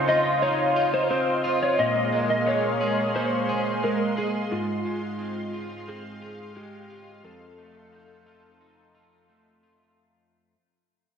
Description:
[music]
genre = dream pop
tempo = 88 BPM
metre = 4/4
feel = straight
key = unclear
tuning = A4 = 442 Hz
[part]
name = electric slide guitar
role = melody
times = 0.0-9.2 s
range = F4 to Eb5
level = -26 LUFS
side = equal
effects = ensemble chorus, analog delay
[part]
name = lush unison pad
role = sustained chords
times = 0.0-9.9 s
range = Ab3 to C6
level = -27 LUFS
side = right 1 dB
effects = chorus, phaser
[part]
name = electric guitar at the edge of break-up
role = arpeggios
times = 0.0-10.5 s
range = F2 to Ab4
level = -30 LUFS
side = left 1 dB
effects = analog chorus, analog delay
[sound]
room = wet lush hall reverb, RT60 2.0 s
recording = dreamy mix soaked in reverb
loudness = -22 LUFS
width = side -7 dB against mid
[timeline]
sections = 0.0-10.0 A section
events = fade-out 0.0-10.0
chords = 0.0 Dbmaj9; 1.8 Bbm11; 4.5 Ab6; 7.2 F7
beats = 0.41 1.10 | 1.78 2.46 3.14 3.82 | 4.51 5.19 5.87 6.55 | 7.23 7.92 8.60 9.28

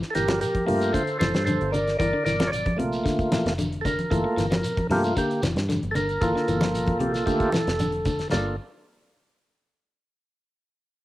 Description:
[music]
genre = afrobeat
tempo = 114 BPM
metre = 4/4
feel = straight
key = G dorian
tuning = A4 = 440 Hz
[part]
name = damped 70s drum kit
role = drums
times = 0.0-8.4 s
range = crash cymbal, hi-hat, kick drum, snare drum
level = -29 LUFS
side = equal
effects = cassette tape
[part]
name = percussive tonewheel organ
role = accompaniment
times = 0.1-8.6 s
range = A3 to D5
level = -24 LUFS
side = right 1 dB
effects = slow rotary speaker
[part]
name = electric guitar at the edge of break-up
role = arpeggios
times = 0.2-8.5 s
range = G2 to F3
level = -30 LUFS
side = left 3 dB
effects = none
[part]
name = fingered electric bass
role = bass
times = 0.2-8.6 s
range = F1 to G2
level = -30 LUFS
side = equal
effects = none
[part]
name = shekere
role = percussion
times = 0.2-8.4 s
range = none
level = -36 LUFS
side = right 1 dB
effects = none
[part]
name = congas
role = percussion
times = 0.3-8.4 s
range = none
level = -31 LUFS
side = equal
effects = none
[sound]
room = moderate spring reverb, RT60 1.4 s, studio reverb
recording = home recording on cassette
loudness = -22 LUFS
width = side -16 dB against mid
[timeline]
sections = 0.0-8.3 A section; 8.3-10.4 B section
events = tonewheel organ solo 0.0-8.3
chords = 0.0 Gm9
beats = 0.42 0.95 1.48 | 2.00 2.53 3.06 3.59 | 4.11 4.64 5.17 5.69 | 6.22 6.75 7.27 7.80 | 8.32

